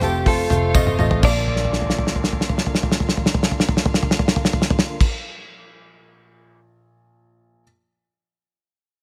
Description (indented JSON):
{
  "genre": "piano-driven pop",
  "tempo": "123 BPM",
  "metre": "4/4",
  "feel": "straight",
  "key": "Bb major",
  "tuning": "A4 = 435 Hz",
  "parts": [
    { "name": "direct-recorded clean electric guitar", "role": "melody", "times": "0.0-5.1 s", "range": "G4 to D5", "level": "-28 LUFS", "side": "equal", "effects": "lush chorus, tape echo" },
    { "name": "warm studio violin section", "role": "second line", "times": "0.0-5.1 s", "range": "D4 to G5", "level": "-35 LUFS", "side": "equal", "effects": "none" },
    { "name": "clear upright piano", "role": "accompaniment", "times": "0.0-7.6 s", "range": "Bb1 to Eb5", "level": "-29 LUFS", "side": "equal", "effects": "none" },
    { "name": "tonewheel organ", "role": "sustained chords", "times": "0.0-5.1 s", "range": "C3 to F4", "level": "-34 LUFS", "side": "equal", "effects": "fast rotary speaker" },
    { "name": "vintage muted picked electric bass", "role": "bass", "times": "0.0-5.1 s", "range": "F1 to Bb1", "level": "-26 LUFS", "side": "equal", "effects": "none" },
    { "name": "damped 70s drum kit", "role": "drums", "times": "0.0-6.6 s", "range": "crash cymbal, hi-hat, kick drum, snare drum, toms", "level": "-21 LUFS", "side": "equal", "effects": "none" },
    { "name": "tambourine", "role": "percussion", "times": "0.0-5.1 s", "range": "none", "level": "-38 LUFS", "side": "equal", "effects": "none" }
  ],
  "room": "small room ambience",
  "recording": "none",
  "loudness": "-19 LUFS",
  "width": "mono",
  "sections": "0.0-1.2 A section; 1.2-5.1 B section",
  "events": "drum fill 0.7-1.2, 1.5-5.0",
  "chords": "0.0 F; 1.2 Bb",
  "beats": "0.26 0.75 | 1.23 1.72 2.21 2.69 | 3.18 3.67 4.15 4.64"
}